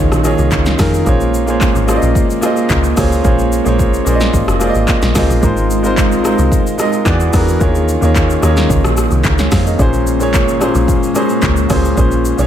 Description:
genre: amapiano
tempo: 110 BPM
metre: 4/4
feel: straight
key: unclear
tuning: A4 = 440 Hz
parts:
  - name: warm concert grand piano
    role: accompaniment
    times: 0.0-12.5 s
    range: Bb2 to F5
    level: -15 LUFS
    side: right 1 dB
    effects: none
  - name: airy breathy pad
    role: sustained chords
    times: 0.0-12.5 s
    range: Eb3 to G#4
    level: -20 LUFS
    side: left 1 dB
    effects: chorus
  - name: deep log drum bass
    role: bass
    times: 0.0-12.5 s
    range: F1 to F2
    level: -16 LUFS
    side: equal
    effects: none
  - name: downlifter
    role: sound effects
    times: 0.0-1.1 s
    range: none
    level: barely audible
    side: none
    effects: none
  - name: deep house drum kit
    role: drums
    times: 0.1-12.5 s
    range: handclaps, hi-hat, kick drum, rim click, shaker, snare drum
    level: -16 LUFS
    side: equal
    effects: overdrive
room: little or no reverb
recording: none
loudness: -11 LUFS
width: side -10 dB against mid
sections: 0.0-12.5 A section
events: none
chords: 0.0 Eb7sus4; 1.1 Bbm7; 5.4 Ab6; 7.1 E9; 7.6 Eb7sus4; 9.8 Bbm7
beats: 0.52 | 1.06 1.61 2.16 2.70 | 3.25 3.79 4.34 4.88 | 5.43 5.97 6.52 7.07 | 7.61 8.16 8.70 9.25 | 9.79 10.34 10.88 11.43 | 11.97

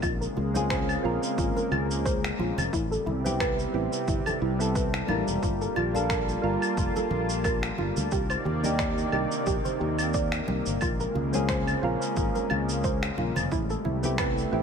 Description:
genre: sunset chillout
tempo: 89 BPM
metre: 4/4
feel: swing 55% on 16ths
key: unclear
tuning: A4 = 438 Hz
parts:
  - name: soft electric-piano-like synth keys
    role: accompaniment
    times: 0.0-14.6 s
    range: Bb3 to Bb4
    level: -32 LUFS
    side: moving between left 7 dB and right 6 dB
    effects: chorus, auto-pan, low-pass filter, ping-pong delay
  - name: lush unison pad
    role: sustained chords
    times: 0.0-14.6 s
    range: C3 to A5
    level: -32 LUFS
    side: equal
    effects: chorus
  - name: soft round pluck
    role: arpeggios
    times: 0.0-14.6 s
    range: E4 to D5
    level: -33 LUFS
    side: right 2 dB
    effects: wide subtle chorus, ping-pong delay
  - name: fingered electric bass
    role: bass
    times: 0.0-14.6 s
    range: E1 to Eb2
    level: -30 LUFS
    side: left 1 dB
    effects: none
  - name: electronic claves, shaker and finger snaps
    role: drums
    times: 0.0-14.5 s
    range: none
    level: -33 LUFS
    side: left 1 dB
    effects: none
  - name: electronic kick drum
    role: drums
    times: 0.0-14.3 s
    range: none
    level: -32 LUFS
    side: left 1 dB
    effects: overdrive
  - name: congas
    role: percussion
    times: 0.4-14.2 s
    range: none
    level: -37 LUFS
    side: right 3 dB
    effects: none
room: moderate lush hall reverb, RT60 1.9 s, digital ambience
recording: none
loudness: -24 LUFS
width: side -6 dB against mid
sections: 0.0-14.6 A section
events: filter sweep on synth arpeggio sound 0.0-14.6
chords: 0.0 Bbm9; 2.7 Am9; 5.4 Gm9; 8.1 Cm9; 10.8 Bbm9; 13.5 Am9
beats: | 0.03 0.71 1.38 2.05 | 2.73 3.40 4.08 4.75 | 5.42 6.10 6.77 7.45 | 8.12 8.80 9.47 10.14 | 10.82 11.49 12.17 12.84 | 13.52 14.19

